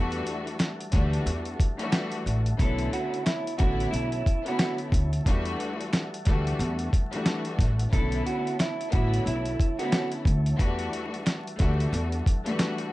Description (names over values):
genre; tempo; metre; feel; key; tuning
hip hop, boom-bap hip-hop; 90 BPM; 4/4; swing 60% on 16ths; unclear; A4 = 440 Hz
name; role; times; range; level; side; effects
warm studio string section; accompaniment; 0.0-12.9 s; D3 to F#4; -31 LUFS; left 2 dB; cassette tape, high-pass filter, low-pass filter
mellow tonewheel organ; sustained chords; 0.0-12.9 s; G3 to A5; -40 LUFS; equal; fast rotary speaker, high-pass filter, low-pass filter
upright bass; bass; 0.0-12.2 s; A1 to E2; -28 LUFS; equal; none
dusty soul sampler-style drum kit; drums; 0.1-12.9 s; hi-hat, kick drum, snare drum; -26 LUFS; equal; none
finger snaps; percussion; 0.6-12.8 s; none; -42 LUFS; right 6 dB; none
electric guitar at the edge of break-up; melody; 2.6-10.1 s; E4 to A4; -32 LUFS; right 3 dB; high-pass filter, low-pass filter, digital delay
room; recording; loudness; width
light reverb; vinyl crackle, nothing above 10.3 kHz; -24 LUFS; side -18 dB against mid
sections
0.0-12.9 A section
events
none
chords
0.0 Em11; 2.6 Bm11; 5.3 Em11; 7.9 Bm11; 10.6 Em11